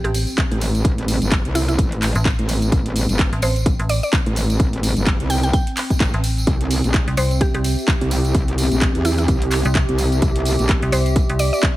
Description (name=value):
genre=bass house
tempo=128 BPM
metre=4/4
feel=swing 58% on 16ths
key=A phrygian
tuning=A4 = 438 Hz
part: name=mallet-like synth pluck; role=melody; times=0.0-11.6 s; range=E4 to G5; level=-26 LUFS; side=right 1 dB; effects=chorus, cassette tape, dub echo
part: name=metallic FM bass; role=bass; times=0.0-11.5 s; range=A1 to C2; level=-20 LUFS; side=equal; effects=tube saturation, sidechain pumping
part: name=house drum kit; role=drums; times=0.0-11.7 s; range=handclaps, hi-hat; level=-26 LUFS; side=equal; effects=none
part: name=impact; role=sound effects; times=0.2-0.8 s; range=none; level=barely audible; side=none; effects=none
part: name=warbly tape-like pad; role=texture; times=0.0-11.8 s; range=C4 to E5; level=-26 LUFS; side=right 1 dB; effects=chorus, built-in reverb, sidechain pumping
part: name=tambourine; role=percussion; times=0.1-11.7 s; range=none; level=-30 LUFS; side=equal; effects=none
part: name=electronic kick drum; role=drums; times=0.4-11.7 s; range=none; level=-18 LUFS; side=equal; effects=none
part: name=metallic wobble bass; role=bass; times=0.5-10.8 s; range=G1 to E2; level=-20 LUFS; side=equal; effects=distortion, chorus, sidechain pumping
room=light reverb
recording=heavily compressed radio sound, multiband compression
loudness=-16 LUFS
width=side -16 dB against mid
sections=0.0-11.8 A section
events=impact 0.0-0.8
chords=0.0 Am; 6.5 C